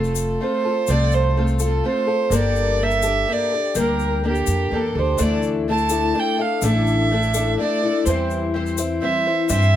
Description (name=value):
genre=acoustic folk duo or small band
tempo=125 BPM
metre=3/4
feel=straight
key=F major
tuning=A4 = 443 Hz
part: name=dark fiddle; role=second line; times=0.0-9.8 s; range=G4 to A5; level=-22 LUFS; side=right 4 dB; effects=none
part: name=picked twelve-string acoustic guitar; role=accompaniment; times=0.0-9.8 s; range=D3 to C5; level=-22 LUFS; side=left 4 dB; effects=none
part: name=upright bass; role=bass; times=0.0-9.8 s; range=F1 to G2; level=-22 LUFS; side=equal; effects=none
part: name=tube shaker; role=percussion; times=0.0-9.7 s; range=none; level=-31 LUFS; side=left 9 dB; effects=none
room=moderate studio reverb, RT60 0.5 s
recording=none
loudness=-18 LUFS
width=side -11 dB against mid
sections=0.0-9.8 A section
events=fiddle solo 0.0-9.8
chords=0.0 F; 2.3 Gmadd9; 5.2 Dsus2; 8.1 C/E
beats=0.40 | 0.88 1.36 1.84 | 2.31 2.79 3.27 | 3.75 4.23 4.71 | 5.19 5.67 6.15 | 6.63 7.11 7.59 | 8.07 8.55 9.03 | 9.51